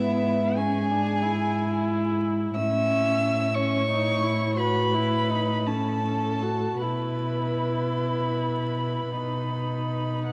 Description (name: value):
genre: classical, slow romantic movement for string quartet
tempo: 51-62 BPM (dotted quarters)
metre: 12/8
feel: rubato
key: unclear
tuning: A4 = 440 Hz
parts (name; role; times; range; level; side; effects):
- rich violin; melody; 0.0-10.3 s; E5 to E6; -33 LUFS; equal; none
- dark violin; second line; 0.0-10.2 s; E4 to E5; -32 LUFS; equal; none
- dark viola; accompaniment; 0.0-10.3 s; B3 to F#4; -32 LUFS; equal; none
- warm cello; bass; 0.0-10.3 s; G#2 to B2; -30 LUFS; equal; none
room: moderate concert hall reverb, RT60 2.3 s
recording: worn, warbling old tape, cassette tape, vinyl crackle, warbly pitch drift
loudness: -26 LUFS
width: mono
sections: 0.0-10.3 A section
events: none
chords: 0.0 E7/G#; 2.6 A; 6.8 E5/B; 9.1 B